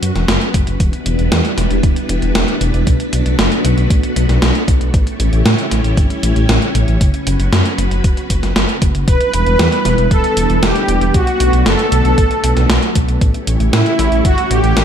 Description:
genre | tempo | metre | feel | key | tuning
synthwave | 116 BPM | 4/4 | straight | B minor | A4 = 440 Hz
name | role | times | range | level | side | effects
string machine, full ensemble | sustained chords | 0.0-14.8 s | G3 to C#5 | -20 LUFS | equal | ensemble chorus, sidechain pumping
dark detuned saw bass | bass | 0.0-14.8 s | D1 to A2 | -16 LUFS | equal | sidechain pumping
gated 80s digital drum machine | drums | 0.0-14.8 s | hi-hat, snare drum | -18 LUFS | equal | gated reverb, gated reverb snare, studio ambience
electronic kick drum | drums | 0.5-14.4 s | none | -14 LUFS | equal | studio ambience
soft supersaw | melody | 9.1-14.8 s | E4 to B4 | -16 LUFS | right 1 dB | ping-pong delay
room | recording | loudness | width
moderate scoring stage reverb, RT60 1.4 s | dark, warm production | -12 LUFS | side -8 dB against mid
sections
0.0-14.8 A section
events
none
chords
0.0 F#sus4; 0.8 Em7; 2.9 Bm7; 4.9 A7; 7.0 F#sus4; 9.1 Em7; 11.1 Bm7; 13.2 A7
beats
0.28 | 0.80 1.32 1.84 2.35 | 2.87 3.39 3.90 4.42 | 4.94 5.46 5.97 6.49 | 7.01 7.53 8.04 8.56 | 9.08 9.59 10.11 10.63 | 11.15 11.66 12.18 12.70 | 13.21 13.73 14.25 14.77

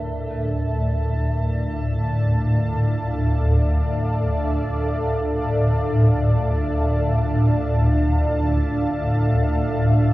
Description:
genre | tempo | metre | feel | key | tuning
dark ambient drone | free time | none | none | unclear | A4 = 444 Hz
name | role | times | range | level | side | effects
dark analog pad | sustained chords | 0.0-10.1 s | D4 to A5 | -26 LUFS | right 1 dB | chorus
dark detuned synth bell | arpeggios | 0.0-2.1 s | A#4 | -44 LUFS | equal | none
swarming drone | drone | 0.0-10.1 s | D2 to A2 | -19 LUFS | equal | built-in reverb
room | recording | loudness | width
moderate huge ambient reverb, RT60 6.9 s | worn, warbling old tape, cassette tape, warbly pitch drift, lossy compression artefacts | -18 LUFS | side -17 dB against mid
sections
0.0-10.1 A section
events
fade-in on analog synth pad 0.0-10.1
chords
0.0 Dm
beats
free time

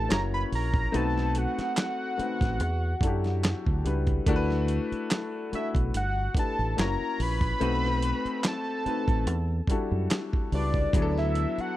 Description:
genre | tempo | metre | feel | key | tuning
R&B, neo-soul | 72 BPM | 4/4 | swing 54% on 16ths | unclear | A4 = 440 Hz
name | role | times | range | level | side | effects
fat analog lead | melody | 0.0-11.8 s | D5 to B5 | -31 LUFS | right 1 dB | phaser, slapback echo
warm baby grand piano | accompaniment | 0.0-11.8 s | F#3 to C#5 | -31 LUFS | left 4 dB | none
deep dub fingered electric bass | bass | 0.0-11.6 s | F#1 to F#2 | -28 LUFS | right 1 dB | none
dusty soul sampler-style drum kit | drums | 0.1-11.8 s | handclaps, hi-hat, kick drum, snare drum | -28 LUFS | right 1 dB | none
room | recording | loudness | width
little or no reverb | dry, close 1970s-style studio recording | -25 LUFS | side -14 dB against mid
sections
0.0-11.8 A section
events
none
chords
0.1 F#7; 0.9 B7b9; 2.6 Em11; 4.3 D69; 5.9 G69; 6.8 F#7; 7.6 B7b9; 9.3 Em11; 10.9 D69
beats
0.10 | 0.93 1.76 2.60 3.43 | 4.26 5.10 5.93 6.76 | 7.60 8.43 9.26 10.10 | 10.93 11.76

